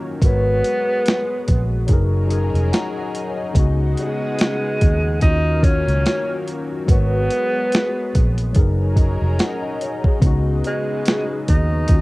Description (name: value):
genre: lo-fi hip hop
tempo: 72 BPM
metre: 4/4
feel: swing 58% on 16ths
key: unclear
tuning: A4 = 440 Hz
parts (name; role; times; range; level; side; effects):
- mellow tine electric piano; accompaniment; 0.0-12.0 s; Db3 to Bb5; -26 LUFS; left 4 dB; medium stereo tremolo, cassette tape, low-pass filter
- lush unison pad; sustained chords; 0.0-12.0 s; Db3 to F5; -29 LUFS; equal; chorus, low-pass filter, cassette tape
- breathy tenor saxophone; melody; 0.2-12.0 s; Ab3 to Eb4; -22 LUFS; right 1 dB; low-pass filter, cassette tape
- vintage muted fingered electric bass; bass; 0.2-12.0 s; F1 to Eb2; -19 LUFS; equal; none
- boom bap sampler-style drum kit; drums; 0.2-12.0 s; hi-hat, kick drum, snare drum; -17 LUFS; equal; cassette tape
room: little or no reverb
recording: home recording on cassette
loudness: -16 LUFS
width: side -21 dB against mid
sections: 0.0-12.0 A section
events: none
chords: 0.2 Abm11; 1.9 Gb69; 3.6 Db9sus4; 5.2 Ebm9; 6.9 Abm11; 8.6 Gb69; 10.2 Db9sus4